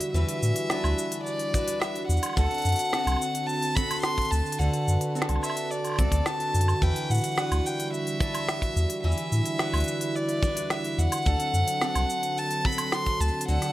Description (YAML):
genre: folktronica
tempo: 108 BPM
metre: 4/4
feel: straight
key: E minor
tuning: A4 = 440 Hz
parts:
  - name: warm violin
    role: melody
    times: 0.0-13.7 s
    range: D5 to C6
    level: -30 LUFS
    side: equal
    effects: digital delay
  - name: warm analog pad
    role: sustained chords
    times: 0.0-13.7 s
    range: D3 to B4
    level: -34 LUFS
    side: right 1 dB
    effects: chorus
  - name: picked acoustic archtop guitar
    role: arpeggios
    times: 0.0-13.7 s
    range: D3 to B4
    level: -32 LUFS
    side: equal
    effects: none
  - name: organic electronic drum kit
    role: drums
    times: 0.0-13.7 s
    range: hi-hat, shaker, snare drum, woodblock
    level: -32 LUFS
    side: right 1 dB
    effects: none
  - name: warm sub bass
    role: bass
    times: 0.1-13.6 s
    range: C2 to A2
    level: -24 LUFS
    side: equal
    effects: tube saturation
  - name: kick drum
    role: drums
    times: 1.5-13.2 s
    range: none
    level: -27 LUFS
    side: equal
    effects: none
room: light reverb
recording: none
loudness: -24 LUFS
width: side -15 dB against mid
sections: 0.0-13.7 A section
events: none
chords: 0.0 Em9; 2.4 D7; 6.8 Em9; 11.3 D7